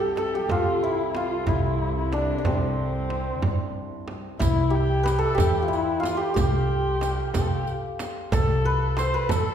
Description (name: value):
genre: Persian modal ensemble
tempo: 61 BPM (dotted quarters)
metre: 6/8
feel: straight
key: C dastgah mahur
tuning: A4 = 440 Hz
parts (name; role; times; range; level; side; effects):
- santur; melody; 0.0-9.5 s; C4 to C5; -26 LUFS; equal; none
- dark kamancheh; second line; 0.0-9.5 s; C4 to C5; -30 LUFS; left 3 dB; none
- upright bass; bass; 0.0-9.5 s; C2 to G2; -27 LUFS; equal; none
- muted studio cello section; drone; 0.0-4.5 s; C2; -36 LUFS; right 1 dB; none
- frame drum; percussion; 0.2-9.4 s; none; -31 LUFS; right 2 dB; none
- tombak; percussion; 0.2-9.5 s; none; -31 LUFS; right 2 dB; none
- riq; percussion; 4.4-9.5 s; none; -37 LUFS; right 3 dB; none
room: wet recital hall reverb, RT60 1.3 s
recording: recorded in a church or concert hall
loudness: -22 LUFS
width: side -8 dB against mid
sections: 0.0-4.4 A section; 4.4-9.5 B section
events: none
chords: none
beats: | 0.49 1.47 | 2.45 3.43 | 4.41 5.39 | 6.37 7.35 | 8.33 9.30